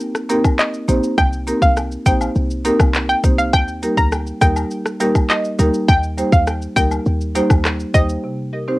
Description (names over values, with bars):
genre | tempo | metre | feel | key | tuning
dancehall | 102 BPM | 4/4 | straight | Eb major | A4 = 439 Hz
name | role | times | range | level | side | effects
island pop drum kit | drums | 0.0-8.2 s | handclaps, hi-hat, kick drum, rim click, shaker | -18 LUFS | equal | cassette tape
marimba with medium mallets | accompaniment | 0.3-8.8 s | C3 to C5 | -20 LUFS | equal | sidechain pumping, cassette tape
cabasa and woodblock | percussion | 0.3-8.1 s | none | -28 LUFS | left 3 dB | none
analog pluck | melody | 0.6-8.1 s | Eb5 to Bb5 | -19 LUFS | equal | chorus, cassette tape, tape echo
short 808-style bass | bass | 0.9-8.2 s | Bb1 to Eb2 | -19 LUFS | equal | none
room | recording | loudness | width
light reverb | home recording on cassette | -14 LUFS | side -19 dB against mid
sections
0.0-8.2 A section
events
none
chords
0.0 Cm7; 3.5 Eb; 8.2 Cm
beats
0.00 0.59 | 1.18 1.77 2.36 2.94 | 3.53 4.12 4.71 5.30 | 5.89 6.47 7.06 7.65 | 8.24